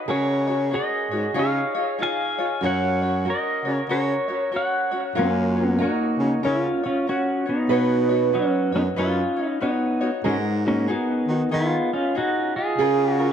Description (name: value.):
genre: Hawaiian.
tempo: 94 BPM.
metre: 4/4.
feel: swing 63% on 8ths.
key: F# major.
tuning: A4 = 441 Hz.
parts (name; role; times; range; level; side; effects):
fingerpicked steel-string acoustic guitar; second line; 0.0-13.3 s; E#4 to B4; -28 LUFS; right 9 dB; none.
tenor ukulele; accompaniment; 0.0-13.3 s; C#4 to C#5; -28 LUFS; left 4 dB; dub echo.
pedal steel guitar; melody; 0.1-13.3 s; F#3 to G#5; -23 LUFS; equal; dub echo.
breathy baritone saxophone; bass; 0.1-13.3 s; F#2 to D#3; -24 LUFS; equal; none.
room: moderate echo chamber reverb, RT60 1.3 s.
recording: echo-heavy mix.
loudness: -20 LUFS.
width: side -8 dB against mid.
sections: 0.0-5.2 A section; 5.2-13.3 A section.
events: none.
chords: 0.1 C#sus4; 1.3 C#add9; 2.6 F#; 5.2 F#maj7; 7.7 Badd9; 10.2 G#m7; 12.8 C#6.